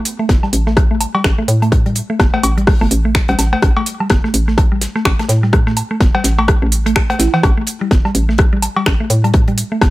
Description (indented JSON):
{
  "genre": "minimal techno",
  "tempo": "126 BPM",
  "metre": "4/4",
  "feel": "swing 59% on 16ths",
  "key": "unclear",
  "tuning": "A4 = 442 Hz",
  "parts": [
    { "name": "damped 70s drum kit", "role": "drums", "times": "0.1-9.9 s", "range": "hi-hat, snare drum", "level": "-30 LUFS", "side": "left 4 dB", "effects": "high-pass filter on hats, high-pass filter on snare, high-pass filter on room" },
    { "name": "minimal click drum kit", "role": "drums", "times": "0.1-9.7 s", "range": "finger snaps, hi-hat", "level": "-18 LUFS", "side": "right 2 dB", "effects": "none" },
    { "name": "mallet-like synth pluck", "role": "riff", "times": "0.2-9.8 s", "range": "E3 to E4", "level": "-20 LUFS", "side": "equal", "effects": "chorus, sidechain pumping, dub echo" },
    { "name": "hollow knocking FM bass", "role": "bass", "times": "0.3-9.9 s", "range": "G1 to A2", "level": "-16 LUFS", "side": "equal", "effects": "sidechain pumping" },
    { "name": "electronic kick drum", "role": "drums", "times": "0.3-9.9 s", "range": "none", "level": "-14 LUFS", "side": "equal", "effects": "none" },
    { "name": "electronic rim click, woodblock and cowbell", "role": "percussion", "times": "0.3-9.9 s", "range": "none", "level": "-19 LUFS", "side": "left 1 dB", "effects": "tape echo" }
  ],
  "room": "little or no reverb",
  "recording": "none",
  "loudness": "-12 LUFS",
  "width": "side -18 dB against mid",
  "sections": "0.0-9.9 A section",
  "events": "none",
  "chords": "none"
}